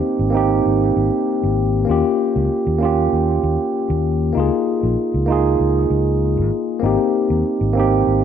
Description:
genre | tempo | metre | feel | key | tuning
sunset chillout | 97 BPM | 4/4 | straight | Ab major | A4 = 440 Hz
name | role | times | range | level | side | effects
tine electric piano | accompaniment | 0.0-8.2 s | Bb3 to Ab4 | -17 LUFS | moving between left 8 dB and right 6 dB | auto-pan, tape echo
fingered electric bass | bass | 0.2-8.2 s | Ab1 to Eb2 | -20 LUFS | equal | none
room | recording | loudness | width
moderate lush hall reverb, RT60 2.0 s | none | -16 LUFS | side -8 dB against mid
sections
0.0-8.2 A section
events
none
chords
0.0 Abmaj7; 1.9 Eb9; 4.4 Db6; 6.8 Abmaj7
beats
0.03 0.65 1.27 | 1.89 2.51 3.12 3.74 | 4.36 4.98 5.60 6.22 | 6.84 7.46 8.07

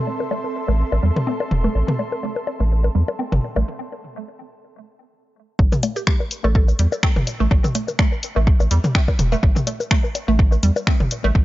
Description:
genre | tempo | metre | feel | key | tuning
minimal techno | 125 BPM | 4/4 | swing 55% on 16ths | A minor | A4 = 440 Hz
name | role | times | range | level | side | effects
airy breathy pad | texture | 0.0-3.7 s | C4 to C6 | -31 LUFS | right 1 dB | chorus, sidechain pumping
flickering grainy texture | texture | 0.0-3.7 s | A4 | -35 LUFS | right 3 dB | built-in reverb, sidechain pumping
hollow square pluck | riff | 0.1-11.3 s | G3 to C4 | -27 LUFS | right 2 dB | chorus, phaser, sidechain pumping, analog delay
electronic bongos and toms | percussion | 0.1-11.3 s | none | -25 LUFS | left 2 dB | analog delay
saturated sub bass | bass | 0.7-11.4 s | E1 to E2 | -18 LUFS | equal | sidechain pumping
electronic kick drum | drums | 5.6-11.4 s | none | -17 LUFS | equal | overdrive
punchy analog drum machine | drums | 5.7-11.2 s | cabasa, finger snaps, hi-hat | -26 LUFS | left 1 dB | overdrive, analog delay
mallet-like synth pluck | melody | 6.0-6.6 s | G4 to A4 | -33 LUFS | right 2 dB | chorus, analog delay
room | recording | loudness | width
little or no reverb | echo-heavy mix, nothing above 7.5 kHz | -17 LUFS | side -16 dB against mid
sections
0.0-5.6 A section; 5.6-11.4 B section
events
break 3.7-5.6; drop 5.6-11.4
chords
0.0 Am; 5.6 N.C.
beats
0.31 0.79 1.27 | 1.75 2.23 2.71 3.19 | 3.67 4.15 4.63 5.11 | 5.59 6.07 6.55 7.03 | 7.51 7.99 8.47 8.95 | 9.43 9.91 10.39 10.87 | 11.35

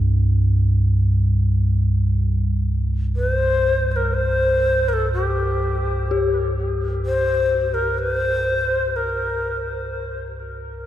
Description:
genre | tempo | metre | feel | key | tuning
dark ambient drone | 62 BPM | 4/4 | straight | unclear | A4 = 441 Hz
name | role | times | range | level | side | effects
dark detuned synth bell | arpeggios | 0.0-10.9 s | G4 | -27 LUFS | left 6 dB | chorus, tape echo
deep rumbling drone | drone | 0.0-10.9 s | C2 to G2 | -20 LUFS | equal | built-in reverb
bright long shakuhachi | melody | 3.2-9.9 s | G4 to C5 | -21 LUFS | left 1 dB | tape echo
room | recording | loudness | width
wet cathedral reverb, RT60 5.4 s | none | -18 LUFS | side -12 dB against mid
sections
0.0-10.9 A section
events
filter sweep on synth drone 0.0-10.9; fade-out 8.3-10.9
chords
0.0 C5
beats
0.26 1.22 2.19 | 3.17 4.15 5.12 6.09 | 7.05 8.00 8.96 9.92

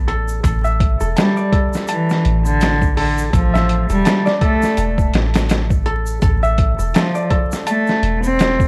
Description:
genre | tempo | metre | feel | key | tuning
trip hop | 83 BPM | 4/4 | swing 57% on 16ths | unclear | A4 = 441 Hz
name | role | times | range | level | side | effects
concert harp | arpeggios | 0.0-8.7 s | A4 to A5 | -26 LUFS | equal | vintage 12-bit sampler grit, tape echo
soft 808-style bass | bass | 0.0-8.7 s | E1 to A1 | -21 LUFS | equal | tube saturation
trip hop sampler-style drum kit | drums | 0.1-8.7 s | hi-hat, kick drum, snare drum | -20 LUFS | equal | overdrive
egg shaker | percussion | 0.3-8.7 s | none | -41 LUFS | equal | none
rich cello | melody | 1.2-8.7 s | D3 to C4 | -21 LUFS | equal | tape echo
room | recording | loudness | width
small room ambience | dry, gritty hardware recording, vinyl crackle | -17 LUFS | mono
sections
0.0-8.7 A section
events
none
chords
0.0 Dsus2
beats
| 0.44 1.16 1.88 2.61 | 3.33 4.05 4.78 5.50 | 6.22 6.94 7.67 8.39

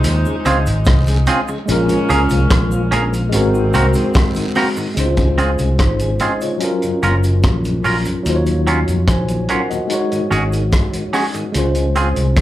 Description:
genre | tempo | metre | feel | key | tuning
lovers rock reggae | 73 BPM | 4/4 | straight | Db major | A4 = 442 Hz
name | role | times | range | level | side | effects
clear saxophone section | second line | 0.0-4.5 s | Gb2 to Eb4 | -25 LUFS | right 1 dB | dub echo, slapback echo
tine electric piano | accompaniment | 0.0-12.4 s | Gb3 to Ab5 | -20 LUFS | left 1 dB | overdrive, fast stereo tremolo, dub echo, slapback echo
fingered electric bass | bass | 0.0-12.4 s | Gb1 to F2 | -17 LUFS | equal | none
vintage drum kit | drums | 0.0-12.4 s | hi-hat, kick drum, rim click | -19 LUFS | equal | dub echo
cabasa and guiro | percussion | 0.0-12.4 s | none | -38 LUFS | right 3 dB | dub echo
tonewheel organ | accompaniment | 0.3-12.3 s | Eb2 to Ab4 | -26 LUFS | left 2 dB | overdrive, dub echo, slapback echo
twangy electric guitar | stabs | 0.5-12.1 s | Gb3 to Bb4 | -19 LUFS | right 3 dB | slapback echo
room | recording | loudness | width
light reverb | live gig heard through the venue's PA, club reverb | -14 LUFS | side -14 dB against mid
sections
0.0-5.0 A section; 5.0-12.4 B section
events
none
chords
0.0 Dbmaj7; 1.7 Bbm7; 3.3 Ab9; 5.0 Dbmaj7; 6.6 Gbmaj7; 8.3 Ebm9; 9.9 Ab7sus4; 11.5 Dbmaj7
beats
0.04 0.86 | 1.68 2.50 3.33 4.15 | 4.97 5.79 6.61 7.43 | 8.26 9.08 9.90 10.72 | 11.54 12.37

